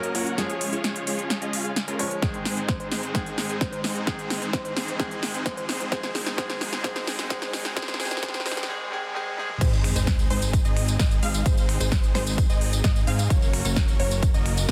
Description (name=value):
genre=EDM, festival progressive house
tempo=130 BPM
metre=4/4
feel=straight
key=Ab mixolydian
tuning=A4 = 436 Hz
part: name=bright grand piano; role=accompaniment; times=0.0-9.6 s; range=Ab2 to Db5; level=-34 LUFS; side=equal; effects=sidechain pumping, digital delay
part: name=supersaw chords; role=riff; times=0.0-14.7 s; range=Ab3 to Gb5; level=-34 LUFS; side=equal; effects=sidechain pumping, low-pass filter, digital delay
part: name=big-room dance drum kit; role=drums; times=0.0-14.7 s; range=crash cymbal, finger snaps, hi-hat, snare drum, tambourine, toms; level=-32 LUFS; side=equal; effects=overdrive
part: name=riser and sub drop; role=sound effects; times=0.1-11.5 s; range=none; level=-40 LUFS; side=equal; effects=none
part: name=bell-like FM electric piano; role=melody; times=0.1-8.6 s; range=F4 to C5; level=-39 LUFS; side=equal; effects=chorus, digital delay
part: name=electronic kick drum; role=drums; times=2.2-14.7 s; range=none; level=-26 LUFS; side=equal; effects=overdrive
part: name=unison pluck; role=arpeggios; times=9.6-14.7 s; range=C5 to F5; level=-36 LUFS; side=equal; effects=cassette tape, sidechain pumping, digital delay
part: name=fat analog bass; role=bass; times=9.6-14.7 s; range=Gb1 to Ab2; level=-29 LUFS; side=equal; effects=sidechain pumping
room=light reverb, digital ambience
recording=dense, heavily limited modern master, high-pass filter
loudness=-25 LUFS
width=mono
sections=0.0-9.6 A section; 9.6-14.7 B section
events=build-up 0.0-9.6; drum fill 0.0-8.7, 9.4; filter sweep on supersaw synth 0.0-9.6; drop 9.6-14.7; impact 9.6-11.5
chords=0.4 Db; 2.2 Ab; 13.3 Gb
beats=| 0.38 0.84 1.30 1.76 | 2.23 2.69 3.15 3.61 | 4.07 4.53 5.00 5.46 | 5.92 6.38 6.84 7.30 | 7.76 8.23 8.69 9.15 | 9.61 10.07 10.53 11.00 | 11.46 11.92 12.38 12.84 | 13.30 13.77 14.23 14.69